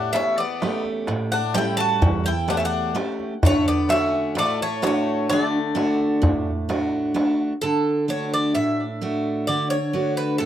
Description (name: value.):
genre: greek folk, Greek bouzouki band.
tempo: 129 BPM (eighths).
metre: 9/8.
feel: straight.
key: D major.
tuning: A4 = 444 Hz.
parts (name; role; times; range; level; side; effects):
Greek bouzouki; melody; 0.0-10.5 s; A4 to A5; -24 LUFS; right 1 dB; tape echo.
Greek bouzouki; second line; 0.0-7.1 s; A3 to F#4; -29 LUFS; left 11 dB; none.
picked steel-string acoustic guitar; accompaniment; 0.0-10.5 s; E2 to C#5; -23 LUFS; right 1 dB; none.
darbuka; percussion; 0.1-7.4 s; none; -24 LUFS; equal; none.
room: light reverb.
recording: dry, close 1970s-style studio recording.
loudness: -20 LUFS.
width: side -11 dB against mid.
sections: 0.0-7.6 A section; 7.6-10.5 B section.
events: none.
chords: 0.0 A7; 3.4 D.